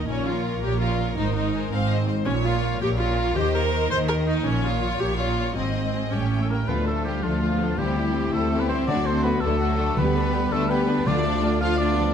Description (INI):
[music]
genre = cinematic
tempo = 110 BPM (dotted quarters)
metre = 6/8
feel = straight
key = Bb dorian, D dorian from 6.7 s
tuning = A4 = 443 Hz
[part]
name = clear symphonic violin section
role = melody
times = 0.0-12.1 s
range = F4 to G5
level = -34 LUFS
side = left 4 dB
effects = none
[part]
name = clear symphonic violin section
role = second line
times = 0.0-12.1 s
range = B3 to F5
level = -32 LUFS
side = left 4 dB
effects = none
[part]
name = rich studio viola section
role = accompaniment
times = 0.0-12.1 s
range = D3 to C5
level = -27 LUFS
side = right 1 dB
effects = none
[part]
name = concert harp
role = arpeggios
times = 0.0-12.1 s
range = Ab2 to G5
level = -32 LUFS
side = left 11 dB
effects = none
[part]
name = rich symphonic cello section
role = bass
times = 0.0-12.1 s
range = Ab2 to F4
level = -28 LUFS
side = right 2 dB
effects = none
[part]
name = rich symphonic double bass section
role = bass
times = 0.0-12.1 s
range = Ab1 to Eb2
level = -27 LUFS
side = right 2 dB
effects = none
[part]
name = warm oboe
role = second line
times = 6.1-12.1 s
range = F4 to F5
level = -29 LUFS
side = right 1 dB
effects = none
[part]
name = warm French horn section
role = sustained chords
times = 6.7-12.1 s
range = G3 to G4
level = -29 LUFS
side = left 5 dB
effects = none
[part]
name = timpani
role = percussion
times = 8.9-11.6 s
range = D3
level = -30 LUFS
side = right 3 dB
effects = none
[sound]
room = light reverb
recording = close, detailed microphones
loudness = -21 LUFS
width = side -8 dB against mid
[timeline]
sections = 0.0-6.7 A section; 6.7-12.1 B section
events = none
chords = 0.1 Bbm; 1.2 Ab; 2.3 Bbm; 3.4 Eb; 4.5 Bbm; 5.6 Ab; 6.1 A7; 6.7 Dm; 7.8 C/D; 8.9 D; 10.0 G/D; 11.1 Dm